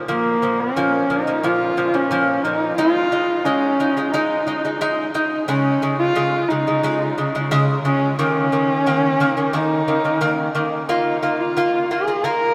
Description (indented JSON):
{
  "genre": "mongolian traditional, Mongolian folk",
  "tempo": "89 BPM",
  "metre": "4/4",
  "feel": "straight",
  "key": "Bb yu mode",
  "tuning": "A4 = 440 Hz",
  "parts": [
    { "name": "lute", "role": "arpeggios", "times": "0.0-12.5 s", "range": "Bb2 to F4", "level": "-23 LUFS", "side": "equal", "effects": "none" },
    { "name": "rich horsehead fiddle", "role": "melody", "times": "0.1-12.5 s", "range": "Bb3 to Bb4", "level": "-22 LUFS", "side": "equal", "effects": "none" }
  ],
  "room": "wet huge ambient reverb, RT60 7.9 s",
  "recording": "heard from further back in the room",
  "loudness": "-19 LUFS",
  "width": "mono",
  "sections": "0.1-12.5 A section",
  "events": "none",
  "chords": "0.1 Bb5; 2.8 Ab5; 5.5 Db5; 8.2 Eb5; 10.9 Bb5",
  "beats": "| 0.09 0.76 1.44 2.11 | 2.79 3.46 4.13 4.81 | 5.48 6.16 6.83 7.51 | 8.19 8.86 9.54 10.21 | 10.89 11.57 12.24"
}